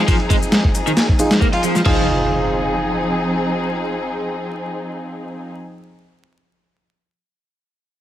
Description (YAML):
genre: breakbeat, breaks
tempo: 135 BPM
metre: 4/4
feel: swing 54% on 16ths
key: F minor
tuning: A4 = 440 Hz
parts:
  - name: muted studio string section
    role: sustained chords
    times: 0.0-5.5 s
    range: F3 to Ab4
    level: -22 LUFS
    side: left 1 dB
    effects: sidechain pumping
  - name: overdriven electric guitar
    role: riff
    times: 0.1-2.1 s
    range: Eb3 to F4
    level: -20 LUFS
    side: equal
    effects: tube saturation, low-pass filter, digital delay
  - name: dusty soul sampler-style drum kit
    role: drums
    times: 0.1-2.0 s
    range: crash cymbal, kick drum, ride cymbal, snare drum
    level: -17 LUFS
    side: equal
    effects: overdrive, studio reverb
  - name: shaker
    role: drums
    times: 0.1-1.8 s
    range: none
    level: -29 LUFS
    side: left 6 dB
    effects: studio reverb
  - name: warm grand piano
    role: stabs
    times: 1.2-5.5 s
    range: Eb4 to Ab4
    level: -24 LUFS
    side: right 2 dB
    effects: low-pass filter, digital delay
  - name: impact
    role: sound effects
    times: 1.9-5.5 s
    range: none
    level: -25 LUFS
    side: equal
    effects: none
room: light reverb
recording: vinyl crackle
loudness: -16 LUFS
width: side -12 dB against mid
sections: 0.0-1.9 A section; 1.9-5.4 B section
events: none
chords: 0.0 Fm7